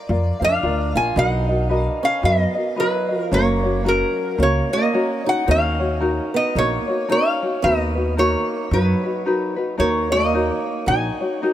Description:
Hawaiian; 111 BPM; 4/4; swing 59% on 8ths; Eb minor; A4 = 440 Hz
lap resonator guitar; melody; 0.0-11.5 s; Bb4 to Ab5; -22 LUFS; equal
tenor ukulele; accompaniment; 0.0-11.5 s; Db4 to F5; -23 LUFS; left 2 dB
upright bass; bass; 0.1-11.1 s; Gb1 to F#2; -22 LUFS; equal
fingerpicked swing-style acoustic guitar; second line; 0.4-11.5 s; F#3 to F4; -26 LUFS; right 4 dB
light reverb; -17 LUFS; side -12 dB against mid
0.0-11.5 A section
0.0 Bb; 1.2 Bmaj7; 3.3 Gb; 5.5 Ebm7; 7.6 Bmaj7/D#; 9.8 Ebm7

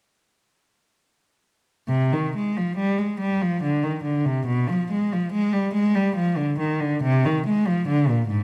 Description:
classical, baroque-style suite movement for unaccompanied cello; 71 BPM; 3/4; rubato; C minor; A4 = 442 Hz
rich cello; solo; 1.9-8.4 s; Ab2 to Ab3; -23 LUFS; equal
moderate recital hall reverb, RT60 1.5 s; close, detailed microphones; -23 LUFS; mono
1.9-8.4 A section

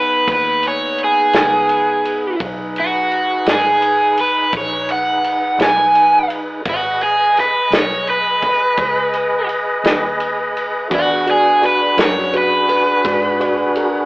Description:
slow blues; 56 BPM (dotted quarters); 12/8; straight; G# minor; A4 = 440 Hz
cranked stack guitar; melody; 0.0-13.7 s; F#4 to G#5; -14 LUFS; right 1 dB; overdrive
tonewheel organ; sustained chords; 0.0-14.1 s; B3 to D#5; -21 LUFS; equal; slow rotary speaker
vintage muted fingered electric bass; bass; 0.0-14.1 s; G#1 to G#2; -35 LUFS; equal
natural country drum kit; drums; 0.3-13.9 s; kick drum, ride cymbal, snare drum; -22 LUFS; equal
warm upright piano; accompaniment; 10.9-14.0 s; F#4 to D5; -21 LUFS; equal
moderate studio ambience, RT60 0.4 s; band playing live in one room, telephone sound; -13 LUFS; side -22 dB against mid
0.0-14.1 A section
0.0 G#m; 10.9 E7

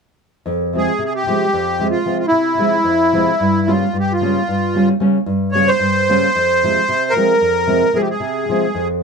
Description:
balkan folk; free time; F harmonic minor; A4 = 440 Hz
nylon-string guitar; accompaniment; 0.5-9.0 s; F2 to Db4; -18 LUFS; equal
accordion; melody; 0.8-8.9 s; E4 to Db5; -16 LUFS; equal; light tremolo tuning
light reverb; -14 LUFS; side -5 dB against mid
0.5-9.0 A section
0.5 Fm; 3.4 Gdim; 6.4 Fm

